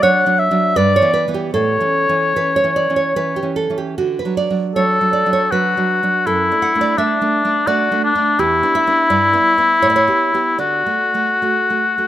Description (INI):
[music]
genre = romantic duo for oboe and classical guitar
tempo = 72-85 BPM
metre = 3/4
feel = rubato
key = D major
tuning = A4 = 439 Hz
[part]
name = warm oboe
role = melody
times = 0.0-12.1 s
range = D4 to F#5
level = -15 LUFS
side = left 2 dB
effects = none
[part]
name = nylon-string guitar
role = accompaniment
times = 0.0-12.1 s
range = E2 to F#5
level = -18 LUFS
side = right 4 dB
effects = none
[sound]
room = light reverb, small room ambience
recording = rough home demo mix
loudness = -14 LUFS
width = side -12 dB against mid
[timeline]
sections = 0.0-12.1 A section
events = none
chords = 0.0 Bm (rootless); 0.8 Em/G; 1.5 A; 4.0 D; 6.3 D/F#; 8.4 Em7; 9.1 Em/G; 9.8 A9; 10.6 D